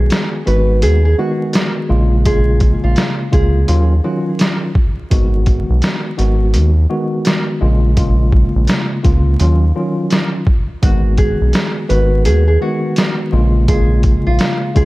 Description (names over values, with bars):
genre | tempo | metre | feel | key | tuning
hip hop, boom-bap hip-hop | 84 BPM | 4/4 | swing 62% on 16ths | G# dorian | A4 = 440 Hz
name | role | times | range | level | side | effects
nylon-string guitar | melody | 0.0-4.2, 10.8-14.8 s | E#4 to B4 | -21 LUFS | right 1 dB | high-pass filter, low-pass filter, tape echo
mellow tine electric piano | accompaniment | 0.0-14.8 s | C#3 to F#4 | -19 LUFS | equal | medium stereo tremolo, cassette tape, high-pass filter, low-pass filter
round analog bass | bass | 0.0-14.8 s | G#1 to D#2 | -13 LUFS | equal | none
trip hop sampler-style drum kit | drums | 0.1-14.8 s | hi-hat, kick drum, snare drum | -16 LUFS | equal | none
room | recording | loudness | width
light reverb, digital ambience | dark, warm production, vinyl crackle | -12 LUFS | side -19 dB against mid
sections
0.0-10.8 A section; 10.8-14.8 A section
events
none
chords
0.0 G#m7; 1.9 A#m7; 3.7 D#m9; 5.1 G#m7; 7.6 A#m7; 9.4 D#m9; 10.8 G#m7; 13.3 A#m7